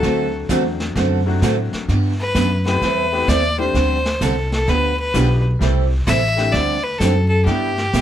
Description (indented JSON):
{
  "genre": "country, western swing",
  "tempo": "129 BPM",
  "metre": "4/4",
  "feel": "swing 66% on 8ths",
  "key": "unclear",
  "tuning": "A4 = 440 Hz",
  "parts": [
    { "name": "clear fiddle", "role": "melody", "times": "0.0-8.0 s", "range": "G4 to E5", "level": "-20 LUFS", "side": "left 2 dB", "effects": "none" },
    { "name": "bright upright piano", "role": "accompaniment", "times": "0.0-7.8 s", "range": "F#3 to G4", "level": "-26 LUFS", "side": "left 5 dB", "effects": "none" },
    { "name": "picked acoustic archtop guitar", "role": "accompaniment", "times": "0.0-8.0 s", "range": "C3 to A4", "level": "-21 LUFS", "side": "right 4 dB", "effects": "none" },
    { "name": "upright bass", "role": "bass", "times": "0.0-8.0 s", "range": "A1 to A2", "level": "-19 LUFS", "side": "equal", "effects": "none" },
    { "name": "vintage brush drum kit", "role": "drums", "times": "0.0-8.0 s", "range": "brushed snare drum, hi-hat, kick drum, snare drum", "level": "-26 LUFS", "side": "equal", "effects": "none" }
  ],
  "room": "light reverb",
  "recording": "none",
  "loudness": "-15 LUFS",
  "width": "side -11 dB against mid",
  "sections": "0.0-8.0 A section",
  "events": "none",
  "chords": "0.0 D7; 1.9 Em7; 2.8 Am9; 3.8 D7sus4; 4.7 G7/D; 5.6 C6; 6.5 D7sus4; 7.5 G6",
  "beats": "| 0.03 0.50 0.96 1.43 | 1.89 2.36 2.82 3.29 | 3.75 4.22 4.68 5.15 | 5.61 6.08 6.54 7.01 | 7.47 7.94"
}